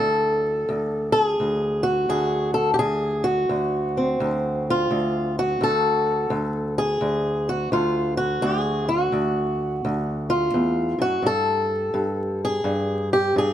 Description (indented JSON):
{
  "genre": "acoustic country blues, solo or duo",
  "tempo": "85 BPM",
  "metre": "4/4",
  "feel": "swing 65% on 8ths",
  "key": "D mixolydian",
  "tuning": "A4 = 438 Hz",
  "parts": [
    { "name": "fingerpicked swing-style acoustic guitar", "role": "solo", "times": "0.0-13.5 s", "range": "D2 to A4", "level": "-20 LUFS", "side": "equal", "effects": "none" }
  ],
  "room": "light reverb",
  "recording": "close, detailed microphones, vinyl crackle",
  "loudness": "-20 LUFS",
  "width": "side -11 dB against mid",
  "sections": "0.0-13.5 A section",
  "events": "none",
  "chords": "0.0 D7; 11.3 N.C.",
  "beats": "0.67 1.38 2.09 | 2.79 3.50 4.20 4.91 | 5.62 6.32 7.03 7.73 | 8.44 9.14 9.85 10.55 | 11.26 11.96 12.66 13.37"
}